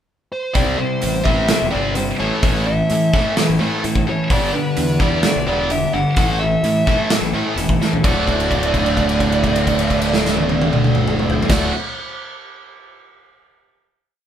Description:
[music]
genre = quiet-loud alternative rock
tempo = 128 BPM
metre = 4/4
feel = straight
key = D major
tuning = A4 = 435 Hz
[part]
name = fuzz lead guitar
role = melody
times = 0.3-11.7 s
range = B4 to F#5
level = -22 LUFS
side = right 1 dB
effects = distortion
[part]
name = tight distorted guitar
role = riff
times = 0.5-11.7 s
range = D2 to F#4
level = -20 LUFS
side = right 1 dB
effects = distortion
[part]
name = electric guitar at the edge of break-up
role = arpeggios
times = 0.6-11.7 s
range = D2 to C5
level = -26 LUFS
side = left 4 dB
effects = none
[part]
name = fuzz fingered electric bass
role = bass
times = 0.6-11.7 s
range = D1 to A2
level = -24 LUFS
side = equal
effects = overdrive
[part]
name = big rock drum kit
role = drums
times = 0.6-11.6 s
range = crash cymbal, hi-hat, kick drum, snare drum, toms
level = -20 LUFS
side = equal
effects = none
[sound]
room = moderate studio reverb, RT60 0.7 s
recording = band playing live in one room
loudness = -15 LUFS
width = side -9 dB against mid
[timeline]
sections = 0.0-0.6 pickup bar; 0.6-8.0 pre-chorus; 8.0-11.8 final chord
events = drum fill 7.8; held note 8.0-11.5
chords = 0.0 N.C.; 0.6 C; 2.2 A; 4.3 G; 6.2 A; 8.0 D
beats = 0.09 | 0.56 1.03 1.50 1.97 | 2.44 2.90 3.37 3.84 | 4.31 4.78 5.24 5.71 | 6.18 6.64 7.11 7.58 | 8.04 8.51 8.97 9.44 | 9.91 10.38 10.84 11.31

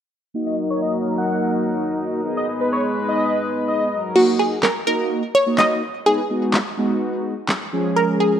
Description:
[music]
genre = dance-pop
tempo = 126 BPM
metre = 4/4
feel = straight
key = Eb minor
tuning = A4 = 441 Hz
[part]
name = mellow synth brass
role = accompaniment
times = 0.3-8.4 s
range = F3 to Eb5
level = -22 LUFS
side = right 1 dB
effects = chorus, low-pass filter
[part]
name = chorused pulse-width pad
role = sustained chords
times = 0.3-4.2 s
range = Gb3 to Cb5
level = -25 LUFS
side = left 2 dB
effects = low-pass filter
[part]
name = wide unison lead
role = melody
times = 0.5-4.0 s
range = Cb5 to Gb5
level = -25 LUFS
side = left 1 dB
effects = low-pass filter, tape echo
[part]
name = wide unison pluck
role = melody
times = 4.2-8.3 s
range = Gb4 to Eb5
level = -18 LUFS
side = equal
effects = none
[part]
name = pop drum kit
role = drums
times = 4.2-7.6 s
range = crash cymbal, handclaps, snare drum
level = -24 LUFS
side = equal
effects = none
[sound]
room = moderate lush hall reverb, RT60 2.0 s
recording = rough home demo mix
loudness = -18 LUFS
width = side -9 dB against mid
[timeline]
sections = 0.3-4.2 A section; 4.2-8.4 B section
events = filter sweep 0.3-4.2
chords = 0.3 Ebm; 2.3 Abm; 3.9 Ebm; 6.1 Abm; 7.7 Db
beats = | 0.35 0.82 1.30 1.77 | 2.25 2.73 3.20 3.68 | 4.16 4.63 5.11 5.58 | 6.06 6.54 7.01 7.49 | 7.97

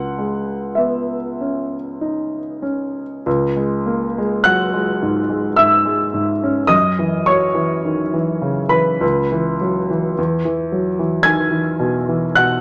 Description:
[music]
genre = classical, impressionist solo piano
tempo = 47-56 BPM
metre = 3/4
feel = rubato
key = C# minor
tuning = A4 = 440 Hz
[part]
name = clear concert grand piano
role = solo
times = 0.0-12.6 s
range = C#2 to G#6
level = -18 LUFS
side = equal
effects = none
[sound]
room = moderate studio ambience, RT60 0.4 s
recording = none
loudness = -18 LUFS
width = mono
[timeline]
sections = 0.0-3.3 A section; 3.3-12.6 A section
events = none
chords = 0.0 C#m9; 3.3 C#m; 6.7 F#5; 9.0 C#m7; 10.2 Eadd9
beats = 0.78 1.99 | 3.26 4.47 5.60 | 6.72 7.85 9.03 | 10.18 11.27 12.38

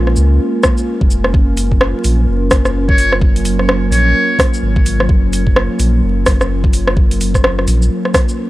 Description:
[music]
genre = future garage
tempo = 128 BPM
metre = 4/4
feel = swing 60% on 16ths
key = unclear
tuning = A4 = 442 Hz
[part]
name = warbly tape-like pad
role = sustained chords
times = 0.0-8.5 s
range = Gb3 to Bb4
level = -19 LUFS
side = equal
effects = chorus, built-in reverb, sidechain pumping
[part]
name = warm sub bass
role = bass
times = 0.0-7.9 s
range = F1 to Db2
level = -15 LUFS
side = equal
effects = sidechain pumping
[part]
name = garage drum kit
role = drums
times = 0.1-8.4 s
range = hi-hat, rim click, shaker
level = -16 LUFS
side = equal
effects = overdrive, small room ambience
[part]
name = electronic kick drum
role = drums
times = 0.6-8.3 s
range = none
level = -13 LUFS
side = equal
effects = overdrive, small room ambience
[part]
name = trumpet with metal mute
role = melody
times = 2.9-4.4 s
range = Db5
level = -19 LUFS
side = equal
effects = vintage 12-bit sampler grit, tape echo
[sound]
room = little or no reverb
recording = dry, gritty hardware recording, vinyl crackle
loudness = -11 LUFS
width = side -17 dB against mid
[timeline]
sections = 0.0-8.5 A section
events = none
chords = 0.0 Bbm7; 1.3 Gbmaj7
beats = 0.41 0.88 | 1.34 1.81 2.28 2.75 | 3.22 3.69 4.16 4.62 | 5.09 5.56 6.03 6.50 | 6.97 7.44 7.91 8.38

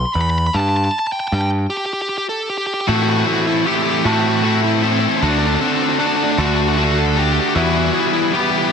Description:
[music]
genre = post-rock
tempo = 51 BPM (dotted quarters)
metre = 6/8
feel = straight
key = unclear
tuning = A4 = 440 Hz
[part]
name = dark smooth lead guitar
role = melody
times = 0.0-8.7 s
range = C4 to C6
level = -20 LUFS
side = equal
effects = overdrive, tape echo
[part]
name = growling picked electric bass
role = bass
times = 0.0-7.9 s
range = D2 to A2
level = -18 LUFS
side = equal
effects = overdrive
[part]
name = crunchy overdriven guitar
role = riff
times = 2.9-8.7 s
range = A2 to A4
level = -17 LUFS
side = left 1 dB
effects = none
[sound]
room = light reverb, digital ambience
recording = none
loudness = -15 LUFS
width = side -6 dB against mid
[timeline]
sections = 0.0-2.9 A section; 2.9-8.7 B section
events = build-up 0.0-2.9; break 1.7-2.9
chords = 0.0 E5; 0.5 Gsus2; 2.9 Am; 5.2 D; 7.6 Em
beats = | 0.54 1.71 | 2.88 4.05 | 5.22 6.39 | 7.56

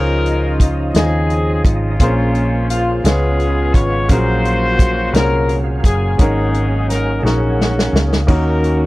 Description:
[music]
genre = slow gospel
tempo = 57 BPM (dotted quarters)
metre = 6/8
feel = straight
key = Db major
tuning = A4 = 440 Hz
[part]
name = mellow horn section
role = melody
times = 0.0-8.9 s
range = Ab3 to Db5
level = -20 LUFS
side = left 2 dB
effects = none
[part]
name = clear baby grand piano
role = accompaniment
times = 0.0-8.9 s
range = Ab2 to F5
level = -21 LUFS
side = left 1 dB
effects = none
[part]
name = percussive tonewheel organ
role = sustained chords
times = 0.0-8.9 s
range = Db3 to F5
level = -25 LUFS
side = right 3 dB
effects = fast rotary speaker, overdrive, chorus vibrato
[part]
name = hollow-body short-scale fingered electric bass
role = bass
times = 0.0-8.9 s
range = Gb1 to Eb2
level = -17 LUFS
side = equal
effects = none
[part]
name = warm soul drum kit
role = drums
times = 0.3-8.8 s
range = crash cymbal, hi-hat, kick drum, snare drum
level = -14 LUFS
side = equal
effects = none
[sound]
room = little or no reverb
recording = none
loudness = -13 LUFS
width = side -19 dB against mid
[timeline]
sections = 0.0-8.9 A section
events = drum fill 7.2-8.3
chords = 0.0 Dbmaj9; 2.0 Bbm9; 3.0 Db7; 4.1 Gbmaj9/Bb; 6.2 Ab9sus4; 8.3 Ebm7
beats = 0.95 | 2.00 3.05 | 4.10 5.14 | 6.19 7.23 | 8.28

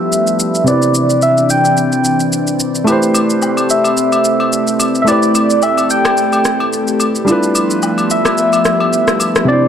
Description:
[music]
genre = amapiano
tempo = 109 BPM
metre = 4/4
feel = swing 55% on 16ths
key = A minor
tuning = A4 = 439 Hz
[part]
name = soft struck synth lead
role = melody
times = 0.0-9.7 s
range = D5 to G5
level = -15 LUFS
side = equal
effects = chorus, phaser, low-pass filter, digital delay
[part]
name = warm baby grand piano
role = accompaniment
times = 0.0-9.7 s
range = C3 to D5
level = -16 LUFS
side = equal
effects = low-pass filter
[part]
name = airy breathy pad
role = sustained chords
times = 0.0-9.7 s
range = E3 to E5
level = -17 LUFS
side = equal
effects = chorus, low-pass filter
[part]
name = electronic shaker and rim click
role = drums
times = 0.1-9.5 s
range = none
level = -19 LUFS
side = equal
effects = none
[part]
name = agogo bells and woodblock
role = percussion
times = 2.9-9.3 s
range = none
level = -21 LUFS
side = left 2 dB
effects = none
[sound]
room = moderate lush hall reverb, RT60 2.6 s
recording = dark, warm production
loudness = -11 LUFS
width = side -8 dB against mid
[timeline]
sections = 0.0-9.7 A section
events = none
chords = 0.0 G13; 0.7 Cmaj9; 2.9 Am9; 7.3 G13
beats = 0.12 | 0.67 1.22 1.77 2.32 | 2.87 3.42 3.97 4.53 | 5.08 5.63 6.18 6.73 | 7.28 7.83 8.38 8.93 | 9.48

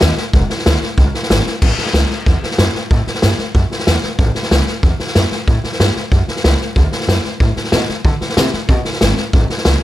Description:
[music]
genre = rockabilly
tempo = 187 BPM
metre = 4/4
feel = straight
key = unclear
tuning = A4 = 440 Hz
[part]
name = upright bass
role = bass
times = 0.0-9.8 s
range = E1 to D3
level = -16 LUFS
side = equal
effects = none
[part]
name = vintage drum kit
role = drums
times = 0.0-9.7 s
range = crash cymbal, hi-hat, kick drum, snare drum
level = -14 LUFS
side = equal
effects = none
[sound]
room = light reverb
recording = none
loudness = -13 LUFS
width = side -14 dB against mid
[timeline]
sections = 0.0-1.6 A section; 1.6-9.8 B section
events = none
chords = none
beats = 0.02 | 0.34 0.66 0.98 1.30 | 1.62 1.94 2.26 2.58 | 2.91 3.23 3.55 3.87 | 4.19 4.51 4.83 5.16 | 5.48 5.80 6.12 6.44 | 6.76 7.08 7.41 7.73 | 8.05 8.37 8.69 9.01 | 9.33 9.66

